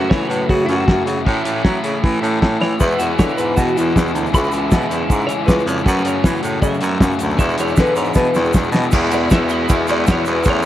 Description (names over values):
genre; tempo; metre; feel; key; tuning
indie rock; 157 BPM; 4/4; straight; unclear; A4 = 444 Hz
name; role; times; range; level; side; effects
twelve-string electric guitar; melody; 0.0-10.7 s; E4 to B5; -22 LUFS; left 1 dB; spring reverb, slapback echo
crunchy overdriven guitar; riff; 0.0-10.7 s; E2 to F#4; -23 LUFS; left 8 dB; spring reverb
crunchy overdriven guitar; riff; 0.0-10.7 s; E2 to F#4; -23 LUFS; right 6 dB; lush chorus, slapback echo
raspy baritone saxophone; bass; 0.0-10.7 s; C#2 to F#3; -20 LUFS; equal; none
cloth-damped thuddy drum kit; drums; 0.1-10.5 s; crash cymbal, hi-hat, kick drum, ride cymbal, snare drum; -16 LUFS; equal; none
egg shaker; percussion; 2.8-10.7 s; none; -36 LUFS; right 10 dB; none
tonewheel organ; sustained chords; 8.9-10.7 s; E4 to A5; -28 LUFS; equal; none
room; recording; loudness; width
little or no reverb; dry, close 1970s-style studio recording; -14 LUFS; side -12 dB against mid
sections
0.0-8.9 A section; 8.9-10.7 B section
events
clean electric guitar solo 0.0-8.9; drum fill 2.6, 8.2-8.9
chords
0.0 F#m; 1.3 A; 2.8 E; 4.3 C#m; 5.9 F#m; 7.4 E7; 8.9 Eadd9